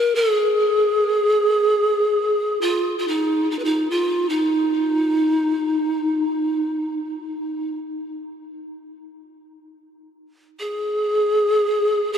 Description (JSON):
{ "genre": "world meditative", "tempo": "free time", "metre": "none", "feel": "none", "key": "unclear", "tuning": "A4 = 442 Hz", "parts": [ { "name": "breathy bright pan flute", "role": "solo", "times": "0.0-12.2 s", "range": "Eb4 to Cb5", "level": "-18 LUFS", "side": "equal", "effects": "ping-pong delay" } ], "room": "wet cathedral reverb, RT60 7.5 s", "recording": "dark, warm production", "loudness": "-18 LUFS", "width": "side -8 dB against mid", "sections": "0.0-12.2 A section", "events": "none", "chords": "none" }